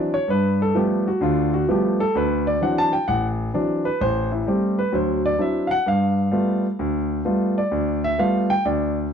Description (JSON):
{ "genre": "jazz", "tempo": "129 BPM", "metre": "4/4", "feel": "swing 66% on 8ths", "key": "unclear", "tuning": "A4 = 443 Hz", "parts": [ { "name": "warm grand piano", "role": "solo", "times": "0.0-9.1 s", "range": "A1 to A5", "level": "-19 LUFS", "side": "equal", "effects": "none" } ], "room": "moderate studio reverb, RT60 0.7 s", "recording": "dark, warm production", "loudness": "-19 LUFS", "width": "side -7 dB against mid", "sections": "0.0-9.1 A section", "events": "none", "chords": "0.3 G9; 2.1 D9; 4.0 Am7; 4.9 D9; 5.9 G9" }